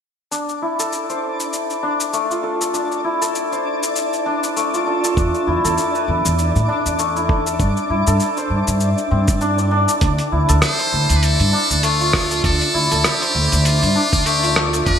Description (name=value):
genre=organic downtempo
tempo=99 BPM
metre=4/4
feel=swing 57% on 16ths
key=D dorian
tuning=A4 = 440 Hz
part: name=santur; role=arpeggios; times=0.3-15.0 s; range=A3 to D5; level=-20 LUFS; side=left 1 dB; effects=low-pass filter, ping-pong delay
part: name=dusty soul sampler-style drum kit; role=drums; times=0.3-15.0 s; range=cabasa, hi-hat, rim click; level=-24 LUFS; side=left 1 dB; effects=overdrive, studio ambience, gated reverb
part: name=twinkling granular texture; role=texture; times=0.8-15.0 s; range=D4 to D5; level=-28 LUFS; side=right 1 dB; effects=built-in reverb, wide subtle chorus
part: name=upright bass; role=bass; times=5.2-15.0 s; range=D2 to A2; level=-19 LUFS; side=equal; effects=sidechain pumping
part: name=electronic kick drum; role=drums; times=5.2-15.0 s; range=none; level=-19 LUFS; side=equal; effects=overdrive, studio ambience
part: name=trumpet with metal mute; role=melody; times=10.6-15.0 s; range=F4 to C5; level=-18 LUFS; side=right 1 dB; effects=ping-pong delay
room=wet lush hall reverb, RT60 2.3 s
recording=bright 1980s-style digital production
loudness=-16 LUFS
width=side -8 dB against mid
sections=0.3-10.0 A section; 10.0-15.0 B section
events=none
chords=0.3 Dm7; 5.2 E5; 7.6 Gsus4; 10.0 Dm7